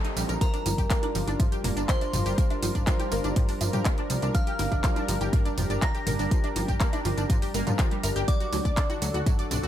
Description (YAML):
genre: progressive house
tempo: 122 BPM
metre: 4/4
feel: straight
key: G minor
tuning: A4 = 440 Hz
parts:
  - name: glassy synth bell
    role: melody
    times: 0.0-8.9 s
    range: A4 to Bb6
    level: -35 LUFS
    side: right 1 dB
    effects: chorus, sidechain pumping, dub echo
  - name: lush unison pad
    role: sustained chords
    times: 0.0-9.7 s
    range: C3 to Bb4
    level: -34 LUFS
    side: equal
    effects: chorus, sidechain pumping
  - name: analog pluck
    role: arpeggios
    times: 0.0-9.7 s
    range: F3 to D5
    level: -32 LUFS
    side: right 1 dB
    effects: ensemble chorus, sidechain pumping, dub echo
  - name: big-room dance drum kit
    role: drums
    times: 0.0-9.7 s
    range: handclaps, hi-hat, tambourine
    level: -34 LUFS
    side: right 1 dB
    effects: small room ambience
  - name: plucky analog bass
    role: bass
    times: 0.2-9.7 s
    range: F1 to G2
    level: -29 LUFS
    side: equal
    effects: sidechain pumping
  - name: electronic kick drum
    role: drums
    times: 0.4-9.4 s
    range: none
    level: -25 LUFS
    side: equal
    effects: small room ambience
  - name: electronic congas, bongos and toms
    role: percussion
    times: 0.7-9.6 s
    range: none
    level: -36 LUFS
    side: left 2 dB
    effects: sidechain pumping on perc, small room ambience, sidechain pumping on toms
room: digital ambience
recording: none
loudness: -23 LUFS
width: side -11 dB against mid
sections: 0.0-9.7 A section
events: none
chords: 0.4 Gm7; 8.3 D